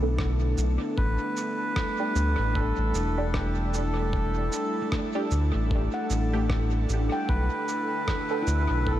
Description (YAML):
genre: ambient dub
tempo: 76 BPM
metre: 4/4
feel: swing 58% on 16ths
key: unclear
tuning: A4 = 440 Hz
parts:
  - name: airy breathy pad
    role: sustained chords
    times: 0.0-9.0 s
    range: D3 to A4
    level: -31 LUFS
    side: left 1 dB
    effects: chorus
  - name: handpan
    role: arpeggios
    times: 0.0-9.0 s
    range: A3 to G5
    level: -37 LUFS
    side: equal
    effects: diffuse ambient delay
  - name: filtered dub chord stab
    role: stabs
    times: 0.0-8.4 s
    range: A3 to A4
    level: -36 LUFS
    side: right 2 dB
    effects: phaser, analog chorus, dub echo
  - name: round analog bass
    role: bass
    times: 0.0-9.0 s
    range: E1 to D2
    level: -26 LUFS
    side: equal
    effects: none
  - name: electronic kick drum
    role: drums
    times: 0.2-9.0 s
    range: none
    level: -30 LUFS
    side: equal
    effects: overdrive
  - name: electronic rim click and shaker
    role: drums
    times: 0.2-8.7 s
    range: none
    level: -38 LUFS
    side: right 1 dB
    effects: overdrive, dub echo
  - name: melodica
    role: melody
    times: 1.0-9.0 s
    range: G4 to B4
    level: -32 LUFS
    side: right 1 dB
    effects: dub echo
  - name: wind-like tuned noise texture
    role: texture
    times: 7.8-9.0 s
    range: A4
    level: -40 LUFS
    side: right 6 dB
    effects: built-in reverb
room: moderate huge ambient reverb, RT60 8.5 s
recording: dreamy mix soaked in reverb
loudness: -24 LUFS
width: side -12 dB against mid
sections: 0.0-9.0 A section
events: none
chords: 0.0 Bm7; 1.0 A7sus4; 7.3 Bm7